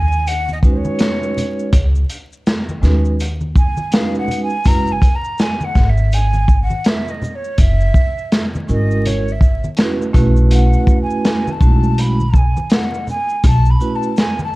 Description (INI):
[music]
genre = hip hop, jazz-hop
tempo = 82 BPM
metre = 4/4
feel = swing 61% on 16ths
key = unclear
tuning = A4 = 438 Hz
[part]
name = breathy mellow jazz flute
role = melody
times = 0.0-14.6 s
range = C5 to Cb6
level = -22 LUFS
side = equal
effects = none
[part]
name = upright bass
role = bass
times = 0.0-13.7 s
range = Gb1 to Eb2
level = -15 LUFS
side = equal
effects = none
[part]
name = maracas and congas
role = percussion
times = 0.1-14.5 s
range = none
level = -28 LUFS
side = equal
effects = none
[part]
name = crunchy breakbeat drum kit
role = drums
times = 0.3-14.4 s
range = hi-hat, kick drum, shaker, snare drum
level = -15 LUFS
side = equal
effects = none
[part]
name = vibraphone with soft mallets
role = accompaniment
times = 0.6-14.1 s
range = Ab3 to Cb5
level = -20 LUFS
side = right 2 dB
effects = none
[sound]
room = small room ambience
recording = dark, warm production, vinyl crackle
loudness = -13 LUFS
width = side -20 dB against mid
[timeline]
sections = 0.0-14.6 A section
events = flute solo 0.0-14.6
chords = 0.0 Db9sus4; 4.7 Gb7sus2; 10.1 Cb9sus4